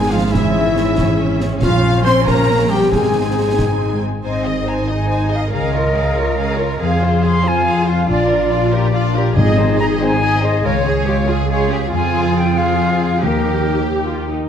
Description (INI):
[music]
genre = cinematic, heroic adventure film score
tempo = 93 BPM (dotted quarters)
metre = 6/8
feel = straight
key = Ab major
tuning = A4 = 440 Hz
[part]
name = warm symphonic violin section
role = melody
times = 0.0-14.3 s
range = G4 to C6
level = -26 LUFS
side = left 4 dB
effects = none
[part]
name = rich symphonic violin section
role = second line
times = 0.0-14.3 s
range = D4 to C6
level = -26 LUFS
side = left 1 dB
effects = none
[part]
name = warm symphonic viola section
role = accompaniment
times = 0.0-14.5 s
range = Ab3 to Ab4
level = -25 LUFS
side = right 1 dB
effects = none
[part]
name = dark French horn section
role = sustained chords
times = 0.0-4.0 s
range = Fb4 to C5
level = -20 LUFS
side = left 4 dB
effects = none
[part]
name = concert harp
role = arpeggios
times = 0.0-14.5 s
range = Ab2 to Ab5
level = -23 LUFS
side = left 8 dB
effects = none
[part]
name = warm trumpet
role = stabs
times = 0.0-4.0 s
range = Fb4 to C5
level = -22 LUFS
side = right 2 dB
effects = none
[part]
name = rich symphonic double bass section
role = bass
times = 0.0-14.3 s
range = Ab1 to F2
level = -20 LUFS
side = right 2 dB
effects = none
[part]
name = warm symphonic cello section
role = bass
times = 0.0-14.2 s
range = Fb3 to Bb4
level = -22 LUFS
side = right 2 dB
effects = none
[part]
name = concert snare drum and concert bass drum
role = drums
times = 0.3-3.8 s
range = none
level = -22 LUFS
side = right 1 dB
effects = none
[part]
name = bright concert flute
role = second line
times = 4.3-13.9 s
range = Bb4 to C6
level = -21 LUFS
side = left 1 dB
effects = none
[part]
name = timpani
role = percussion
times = 9.4-10.0, 13.2-13.8 s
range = Ab2 to Eb3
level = -21 LUFS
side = equal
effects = none
[sound]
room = wet scoring stage reverb, RT60 2.0 s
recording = dark, warm production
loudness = -14 LUFS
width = side -8 dB against mid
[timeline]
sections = 0.0-4.2 A section; 4.2-14.5 B section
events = none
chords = 0.3 Dbm/Ab; 1.6 Bbm; 2.9 Ab; 5.5 Db; 6.8 Fm; 8.1 Bb; 9.4 Ab; 10.6 Db; 11.9 Fm; 13.2 Eb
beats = | 0.34 0.98 | 1.62 2.27 | 2.92 3.58 | 4.24 4.88 | 5.53 6.17 | 6.81 7.45 | 8.09 8.73 | 9.36 10.00 | 10.64 11.29 | 11.93 12.58 | 13.23 13.88